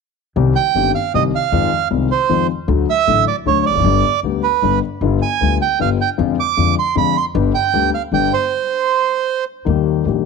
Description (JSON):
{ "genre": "tango", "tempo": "155 BPM", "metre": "3/4", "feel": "rubato", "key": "unclear", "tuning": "A4 = 435 Hz", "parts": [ { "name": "dark concert grand piano", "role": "accompaniment", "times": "0.4-10.3 s", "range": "G1 to G4", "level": "-18 LUFS", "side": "left 11 dB", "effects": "none" }, { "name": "upright bass", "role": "bass", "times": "0.4-10.3 s", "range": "E1 to F2", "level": "-22 LUFS", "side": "equal", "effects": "none" }, { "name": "bandoneon", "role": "melody", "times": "0.6-9.4 s", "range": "B4 to D6", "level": "-17 LUFS", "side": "right 12 dB", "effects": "none" } ], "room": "light reverb, studio ambience", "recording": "1960s-style stereo with parts hard left and right", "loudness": "-14 LUFS", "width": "side -5 dB against mid", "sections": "0.4-9.7 A section", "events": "stop 8.5-9.7", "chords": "0.4 Cm; 1.5 Fm7; 2.7 D; 3.8 G; 5.0 G7; 6.2 Dm7b5/F; 7.3 G; 8.5 N.C.; 9.7 Eb" }